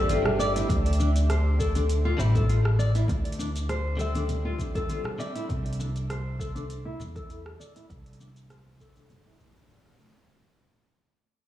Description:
organic downtempo; 100 BPM; 4/4; swing 53% on 16ths; D minor; A4 = 437 Hz
direct-recorded clean electric guitar; accompaniment; 0.0-5.8 s; D3 to E5; -36 LUFS; left 1 dB; sidechain pumping, digital delay, shimmer reverb
granular cloud pad; sustained chords; 0.0-0.7 s; G4 to E5; -37 LUFS; right 5 dB; built-in reverb, sidechain pumping, shimmer reverb
nylon-string guitar; arpeggios; 0.0-10.3 s; A3 to D5; -31 LUFS; left 2 dB; low-pass filter, digital delay, shimmer reverb
upright bass; bass; 0.0-10.2 s; G1 to E2; -26 LUFS; equal; sidechain pumping
afro-pop drum kit; drums; 0.1-10.3 s; hi-hat, rim click, shaker; -37 LUFS; right 1 dB
bongos and congas; percussion; 0.1-10.1 s; -37 LUFS; left 1 dB
electronic kick drum; drums; 0.7-9.7 s; -29 LUFS; equal; overdrive
light reverb, digital ambience; small room reverb; -24 LUFS; side -13 dB against mid
0.7-10.3 A section
fade-out 0.7-10.3; filter sweep on nylon-string guitar 0.7-10.3
0.0 Bb6 (rootless); 0.7 D7(no3); 5.5 C7
0.10 | 0.69 1.29 1.90 2.50 | 3.10 3.69 4.29 4.89 | 5.50 6.09 6.70 7.29 | 7.89 8.49 9.10 9.70

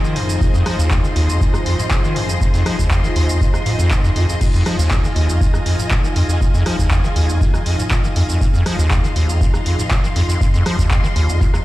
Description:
acid house; 120 BPM; 4/4; straight; F minor; A4 = 441 Hz
string machine, full ensemble; sustained chords; 0.0-11.6 s; F3 to F5; -25 LUFS; equal; ensemble chorus, sidechain pumping
acid bass, square; riff; 0.0-11.6 s; Eb2 to F3; -18 LUFS; equal; sidechain pumping
punchy analog drum machine; drums; 0.0-11.6 s; crash cymbal, handclaps, hi-hat, rim click, shaker; -25 LUFS; right 1 dB
clear symphonic string section; texture; 0.0-11.6 s; F4 to C6; -27 LUFS; left 2 dB; sidechain pumping
electronic kick drum; drums; 0.4-11.5 s; -18 LUFS; equal
little or no reverb; played on a big sound system in a bare room, large studio reverb; -14 LUFS; side -17 dB against mid
0.0-11.6 A section
0.0 Fm7
| 0.41 0.91 1.41 1.91 | 2.41 2.91 3.41 3.91 | 4.41 4.91 5.41 5.91 | 6.41 6.91 7.41 7.91 | 8.41 8.91 9.41 9.91 | 10.41 10.91 11.41

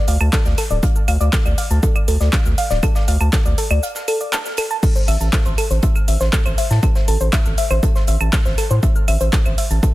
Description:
melodic techno; 120 BPM; 4/4; straight; A minor; A4 = 442 Hz
woody wave-folded pluck; arpeggios; 0.1-9.9 s; A4 to A6; -24 LUFS; left 2 dB; chorus, sidechain pumping, tape echo
round analog bass; bass; 0.1-9.8 s; D1 to A2; -17 LUFS; equal; sidechain pumping
big rock drum kit; drums; 0.1-9.9 s; hi-hat, snare drum; -35 LUFS; right 3 dB
punchy analog drum machine; drums; 0.1-9.9 s; claves, crash cymbal, handclaps, hi-hat, shaker; -24 LUFS; right 1 dB; overdrive, sidechain pumping on perc, sidechain pumping on hats, sidechain pumping on cymbals
electronic kick drum; drums; 0.3-9.9 s; -17 LUFS; equal
little or no reverb; dense, heavily limited modern master; -15 LUFS; side -17 dB against mid
0.0-9.9 A section
break 3.8-4.8
0.0 Dm; 4.8 Am
0.33 | 0.83 1.33 1.83 2.33 | 2.83 3.33 3.83 4.33 | 4.83 5.33 5.83 6.33 | 6.83 7.33 7.83 8.33 | 8.83 9.33 9.83

